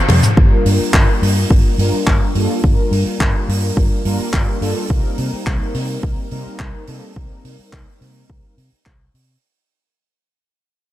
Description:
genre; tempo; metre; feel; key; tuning
nu-disco, nu disco; 106 BPM; 4/4; straight; G minor; A4 = 440 Hz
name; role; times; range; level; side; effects
vintage muted fingered electric bass; bass; 0.1-9.4 s; G1 to C3; -18 LUFS; equal; none
tight funk drum kit; drums; 0.1-9.3 s; handclaps, hi-hat, ride cymbal, shaker, toms; -21 LUFS; equal; none
mellow synth brass; accompaniment; 0.4-8.6 s; G3 to Bb4; -22 LUFS; left 1 dB; chorus, dub echo
electronic kick drum; drums; 0.4-9.0 s; none; -15 LUFS; equal; none
room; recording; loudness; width
light reverb, small room ambience; dark, warm production; -14 LUFS; side -14 dB against mid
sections
0.4-9.4 A section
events
drum fill 0.0-0.4; fade-out 0.4-9.4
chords
0.4 Gm7; 4.9 Cm7

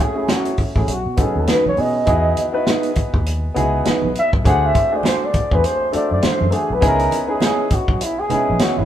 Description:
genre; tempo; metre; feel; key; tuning
lush 1970s-style soul; 101 BPM; 4/4; swing 58% on 16ths; unclear; A4 = 440 Hz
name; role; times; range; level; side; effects
breathy flugelhorn; melody; 0.0-8.9 s; E4 to F#5; -20 LUFS; left 1 dB; none
warm grand piano; accompaniment; 0.0-8.9 s; A3 to B4; -21 LUFS; equal; none
electric guitar through a small old amp; riff; 0.3-8.8 s; F#3 to C#5; -24 LUFS; right 5 dB; none
vintage drum kit; drums; 0.3-8.8 s; hi-hat, kick drum, snare drum; -19 LUFS; equal; none
congas; percussion; 0.3-8.9 s; none; -30 LUFS; right 6 dB; none
vintage muted fingered electric bass; bass; 0.6-8.9 s; G#1 to B2; -22 LUFS; equal; none
room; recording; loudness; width
moderate large studio reverb, RT60 1.4 s; band playing live in one room, lossy compression artefacts; -15 LUFS; side -10 dB against mid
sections
0.0-8.9 A section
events
flugelhorn solo 0.0-8.9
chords
0.0 F#m7; 0.9 B7; 2.1 Emaj7; 4.5 D7#11; 6.8 C#m7

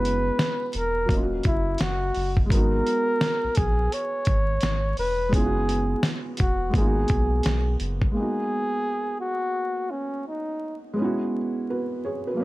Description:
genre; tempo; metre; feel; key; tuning
lo-fi hip hop; 85 BPM; 4/4; swing 63% on 16ths; G# minor; A4 = 439 Hz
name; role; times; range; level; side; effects
breathy flugelhorn; melody; 0.0-10.8 s; C#4 to C#5; -27 LUFS; equal; low-pass filter
felt-muted upright piano; accompaniment; 0.0-12.4 s; F#3 to D#5; -28 LUFS; right 1 dB; cassette tape, low-pass filter
warm sub bass; bass; 0.0-8.1 s; D#1 to B1; -26 LUFS; equal; none
dusty soul sampler-style drum kit; drums; 0.1-8.1 s; hi-hat, kick drum, snare drum; -24 LUFS; equal; none
room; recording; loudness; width
little or no reverb; vinyl crackle; -22 LUFS; side -18 dB against mid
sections
0.0-8.2 A section; 8.2-12.4 B section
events
none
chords
0.0 F#9sus4; 1.1 D#m7; 2.5 G#m7; 5.3 F#9sus4; 6.7 G#m9; 8.2 G#m7; 11.0 F#9sus4

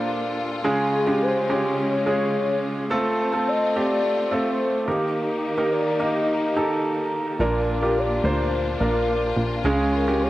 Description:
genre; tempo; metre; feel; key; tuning
pop; 107 BPM; 4/4; straight; unclear; A4 = 440 Hz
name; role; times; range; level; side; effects
hollow clarinet-like synth lead; melody; 0.0-10.3 s; Ab4 to Eb5; -26 LUFS; left 3 dB; chorus, cassette tape
clear concert grand piano; accompaniment; 0.0-10.3 s; Bb2 to C5; -22 LUFS; right 2 dB; cassette tape
clear studio string section; sustained chords; 0.0-10.3 s; Db3 to G4; -29 LUFS; left 2 dB; cassette tape
plucky analog bass; bass; 7.4-10.3 s; Bb1 to D2; -26 LUFS; equal; none
room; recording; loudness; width
moderate spring reverb, RT60 1.3 s, studio reverb; home recording on cassette; -20 LUFS; side -16 dB against mid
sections
0.0-10.3 A section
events
none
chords
0.0 Bb; 0.7 Db; 2.9 F; 4.9 Eb; 7.4 Bb; 9.7 Db

